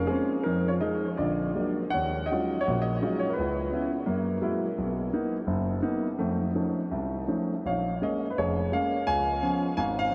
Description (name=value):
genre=solo jazz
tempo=169 BPM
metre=4/4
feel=swing 63% on 8ths, rubato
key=Eb minor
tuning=A4 = 445 Hz
part: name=warm grand piano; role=solo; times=0.0-10.1 s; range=F1 to Ab5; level=-28 LUFS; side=equal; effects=diffuse ambient delay
room=wet huge ambient reverb, RT60 7.9 s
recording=dreamy mix soaked in reverb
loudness=-28 LUFS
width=mono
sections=0.0-1.9 A section; 1.9-10.1 B section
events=none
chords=0.5 Fm7; 1.2 Bb7b13; 1.9 Ebm11; 3.4 Dbm7; 4.1 Gb9; 4.8 Bmaj7; 6.2 F7b13; 7.7 Bbm7; 9.1 Db7